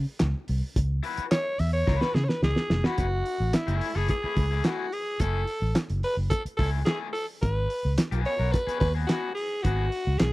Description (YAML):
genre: funk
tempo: 108 BPM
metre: 4/4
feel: straight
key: unclear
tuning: A4 = 440 Hz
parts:
  - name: vintage muted fingered electric bass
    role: bass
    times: 0.0-10.3 s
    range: E#1 to C#3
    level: -26 LUFS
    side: equal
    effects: none
  - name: cloth-damped thuddy drum kit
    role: drums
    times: 0.2-10.3 s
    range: handclaps, hi-hat, kick drum, snare drum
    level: -27 LUFS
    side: equal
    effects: none
  - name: raw garage guitar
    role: accompaniment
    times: 1.0-9.8 s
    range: A3 to B4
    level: -34 LUFS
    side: left 6 dB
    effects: overdrive
  - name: raspy alto saxophone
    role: melody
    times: 1.3-10.3 s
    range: E4 to E5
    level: -29 LUFS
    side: equal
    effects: none
room: small room ambience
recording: dry, close 1970s-style studio recording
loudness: -24 LUFS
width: side -19 dB against mid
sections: 0.0-3.0 A section; 3.0-10.3 B section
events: alto saxophone solo 0.0-3.0; drum fill 1.9-3.0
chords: 0.0 C#m7; 3.0 F#m9; 7.4 G#m7